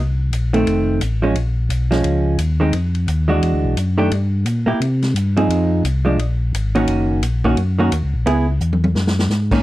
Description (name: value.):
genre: soul jazz organ trio.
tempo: 174 BPM.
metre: 4/4.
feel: swing 63% on 8ths.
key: unclear.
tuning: A4 = 441 Hz.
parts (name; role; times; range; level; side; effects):
mellow tonewheel organ; bass; 0.0-9.6 s; F1 to C3; -18 LUFS; left 1 dB; overdrive, chorus vibrato, slow rotary speaker.
vintage drum kit; drums; 0.3-9.6 s; crash cymbal, hi-hat, kick drum, ride cymbal, snare drum, toms; -25 LUFS; left 1 dB; none.
vintage hollow-body jazz guitar; accompaniment; 0.5-9.6 s; Eb3 to Ab4; -18 LUFS; right 2 dB; none.
room: small room ambience.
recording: dry, close 1970s-style studio recording.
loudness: -16 LUFS.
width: side -16 dB against mid.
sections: 0.0-9.6 A section.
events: drum fill 8.6-9.3.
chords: 0.0 Bbsus24; 0.7 F7; 1.4 Bbm7; 2.7 Fm7; 3.4 E9; 4.1 Gm6; 4.8 C5; 5.5 Fm7; 6.2 Ab9sus4; 6.9 Ebm7; 8.3 Dbm7; 9.0 Gb69.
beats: 0.32 0.67 1.01 | 1.36 1.70 2.05 2.39 | 2.74 3.08 3.43 3.77 | 4.12 4.46 4.81 5.16 | 5.50 5.85 6.19 6.54 | 6.88 7.23 7.57 7.92 | 8.27 8.61 8.96 9.30.